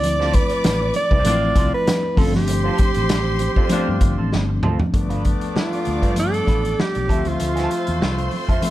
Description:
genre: lush 1970s-style soul.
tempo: 98 BPM.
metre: 4/4.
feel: swing 54% on 16ths.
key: unclear.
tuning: A4 = 438 Hz.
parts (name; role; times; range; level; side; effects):
clear alto saxophone; melody; 0.0-8.5 s; F4 to D5; -23 LUFS; right 2 dB; tape echo.
warm symphonic string section; second line; 0.0-8.7 s; C5 to D6; -31 LUFS; left 1 dB; none.
mellow reed electric piano; accompaniment; 0.0-8.7 s; F3 to E5; -25 LUFS; left 3 dB; fast tremolo.
electric guitar through a small old amp; riff; 0.0-8.7 s; F3 to C5; -31 LUFS; right 4 dB; wah.
fingered electric bass; bass; 0.0-8.6 s; G1 to G2; -23 LUFS; equal; none.
vintage drum kit; drums; 0.0-8.7 s; hi-hat, kick drum, snare drum, toms; -21 LUFS; equal; none.
congas; percussion; 0.0-8.7 s; none; -29 LUFS; right 5 dB; none.
warm horn section; stabs; 1.3-8.7 s; A3 to F4; -30 LUFS; left 2 dB; none.
room: studio reverb.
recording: none.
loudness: -17 LUFS.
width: side -15 dB against mid.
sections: 0.0-4.9 A section; 4.9-8.7 B section.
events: drum fill 4.3-4.9.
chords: 0.0 Dm7; 2.2 G9sus4; 4.9 G9; 7.1 Dm9.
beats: | 0.03 0.65 1.26 1.87 | 2.48 3.10 3.71 4.32 | 4.94 5.55 6.17 6.78 | 7.40 8.01 8.63.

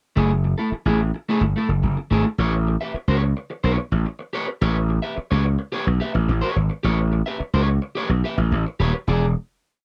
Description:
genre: funk.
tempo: 108 BPM.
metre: 4/4.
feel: straight.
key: unclear.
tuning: A4 = 440 Hz.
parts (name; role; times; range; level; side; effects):
electric guitar at the edge of break-up; accompaniment; 0.2-9.3 s; A3 to E5; -27 LUFS; equal; none.
gritty slap bass; bass; 0.2-9.3 s; D#1 to C#2; -22 LUFS; equal; overdrive.
room: little or no reverb.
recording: dry, close 1970s-style studio recording.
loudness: -22 LUFS.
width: mono.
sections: 0.2-9.1 bridge; 9.1-9.8 final chord.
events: none.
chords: 0.2 F#m9; 2.4 A9; 9.1 E7.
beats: | 0.16 0.72 1.28 1.84 | 2.39 2.95 3.51 4.06 | 4.62 5.17 5.73 6.29 | 6.84 7.40 7.96 8.52 | 9.08.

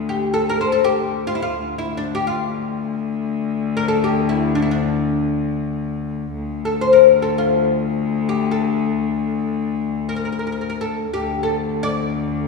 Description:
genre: Turkish makam ensemble.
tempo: free time.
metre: none.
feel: none.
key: D makam nihavent.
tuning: A4 = 439 Hz.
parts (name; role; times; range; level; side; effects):
rich cello; drone; 0.0-12.5 s; D2; -22 LUFS; left 5 dB; none.
oud; melody; 0.1-12.5 s; D4 to D5; -19 LUFS; left 4 dB; none.
room: wet concert hall reverb, RT60 2.1 s.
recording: heard from further back in the room, studio reverb.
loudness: -18 LUFS.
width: side -3 dB against mid.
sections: 0.0-6.3 A section; 6.3-12.5 A section.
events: none.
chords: none.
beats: free time.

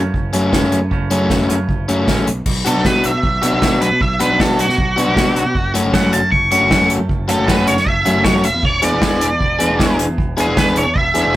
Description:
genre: indie rock.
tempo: 155 BPM.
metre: 4/4.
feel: straight.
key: unclear.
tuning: A4 = 445 Hz.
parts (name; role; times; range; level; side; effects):
twangy electric guitar; riff; 0.0-11.4 s; F#2 to A4; -30 LUFS; right 5 dB; none.
growling fingered electric bass; bass; 0.0-11.3 s; E1 to B2; -21 LUFS; equal; overdrive.
unplugged drum kit; drums; 0.1-11.2 s; crash cymbal, hi-hat, kick drum, snare drum; -19 LUFS; equal; none.
crunchy overdriven guitar; riff; 0.3-11.4 s; C#3 to G#4; -18 LUFS; left 2 dB; none.
octave-fuzz lead guitar; melody; 2.7-11.3 s; F#4 to C#6; -17 LUFS; right 1 dB; distortion.
room: moderate studio ambience, RT60 0.5 s.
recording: rough rehearsal-room recording.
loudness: -13 LUFS.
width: side -15 dB against mid.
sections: 0.0-2.5 A section; 2.5-11.4 B section.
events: lead electric guitar solo 2.5-11.4.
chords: 0.0 F#m7; 2.3 N.C.; 2.5 Bm7; 5.5 F#m; 8.4 E7.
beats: 0.13 0.52 | 0.91 1.29 1.68 2.07 | 2.46 2.84 3.23 3.62 | 4.00 4.39 4.78 5.16 | 5.55 5.93 6.32 6.71 | 7.09 7.48 7.87 8.25 | 8.64 9.02 9.41 9.79 | 10.18 10.57 10.95 11.34.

